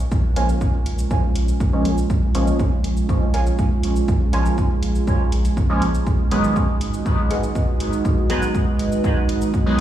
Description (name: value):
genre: dub techno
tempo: 121 BPM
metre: 4/4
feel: straight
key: Bb phrygian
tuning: A4 = 440 Hz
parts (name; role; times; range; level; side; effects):
- deep dark ambient pad; sustained chords; 0.0-9.8 s; Ab3 to Cb5; -25 LUFS; right 3 dB; chorus, built-in reverb, sidechain pumping
- soft dub sub bass; bass; 0.0-9.8 s; Ab1 to Bb1; -22 LUFS; equal; sidechain pumping
- electronic cabasa and hi-hat; drums; 0.1-9.6 s; none; -37 LUFS; equal; none
- electronic kick drum; drums; 0.1-9.6 s; none; -20 LUFS; equal; none
- warbly dusty pluck; riff; 0.4-9.1 s; Ab4 to Ab5; -32 LUFS; equal; chorus, cassette tape, sidechain pumping, dub echo
- resonant sweep polysynth; stabs; 0.4-9.8 s; Eb3 to Db4; -25 LUFS; right 1 dB; chorus, phaser, dub echo
room: light reverb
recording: played on a big sound system in a bare room, large studio reverb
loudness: -17 LUFS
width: side -12 dB against mid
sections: 0.0-9.8 A section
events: none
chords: 0.0 Bbm7; 6.1 Abm7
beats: | 0.12 0.61 1.11 1.60 | 2.10 2.60 3.09 3.59 | 4.08 4.58 5.07 5.57 | 6.07 6.56 7.06 7.55 | 8.05 8.55 9.04 9.54